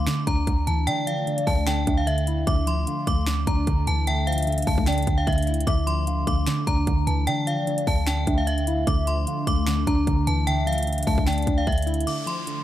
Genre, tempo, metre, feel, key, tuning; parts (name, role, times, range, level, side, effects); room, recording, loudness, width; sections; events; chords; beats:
hip hop, trap; 150 BPM; 4/4; half-time; D minor; A4 = 437 Hz
metallic FM bell; melody; 0.0-12.6 s; E5 to D6; -28 LUFS; equal; chorus, digital delay
hollow clarinet-like synth lead; second line; 0.0-11.6 s; D5 to G5; -33 LUFS; left 3 dB; chorus, digital delay
glassy wavetable pluck; accompaniment; 0.0-12.6 s; D3 to E4; -28 LUFS; right 1 dB; chorus
airy breathy pad; sustained chords; 0.0-12.6 s; D3 to D4; -34 LUFS; left 3 dB; chorus
clean 808-style bass; bass; 0.0-12.1 s; D2 to D3; -25 LUFS; equal
trap drum kit; drums; 0.1-12.6 s; finger snaps, hi-hat, kick drum, snare drum; -26 LUFS; equal
downlifter; sound effects; 12.1-12.6 s; -35 LUFS; equal
little or no reverb; -21 LUFS; side -13 dB against mid
0.0-12.1 A section
0.0 Dmadd9; 12.1 Dm
0.07 0.47 | 0.87 1.27 1.67 2.07 | 2.47 2.87 3.27 3.67 | 4.07 4.47 4.87 5.27 | 5.67 6.07 6.47 6.87 | 7.27 7.67 8.07 8.47 | 8.87 9.27 9.67 10.07 | 10.47 10.87 11.27 11.67 | 12.07 12.47